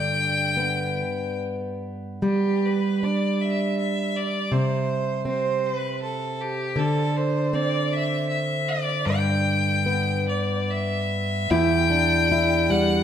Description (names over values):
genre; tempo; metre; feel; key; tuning
celtic folk, Celtic slow air; 70-84 BPM; 3/4; rubato; G major; A4 = 442 Hz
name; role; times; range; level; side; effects
rich fiddle; melody; 0.0-13.0 s; G4 to G5; -26 LUFS; left 1 dB; none
fingerpicked plugged-in steel-string acoustic guitar; accompaniment; 0.0-13.0 s; E2 to E4; -23 LUFS; right 1 dB; none
room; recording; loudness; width
wet lush hall reverb, RT60 1.5 s, small room ambience; dreamy mix soaked in reverb; -21 LUFS; side -9 dB against mid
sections
0.0-2.2 A section; 2.2-11.5 A section; 11.5-13.0 B section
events
none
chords
0.0 G; 4.5 N.C.; 6.8 Amadd11/D (rootless); 9.1 G6; 11.5 Em7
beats
0.58 1.40 | 2.23 3.03 3.79 | 4.52 5.26 6.01 | 6.77 7.53 8.29 | 9.06 9.86 10.69 | 11.51 12.31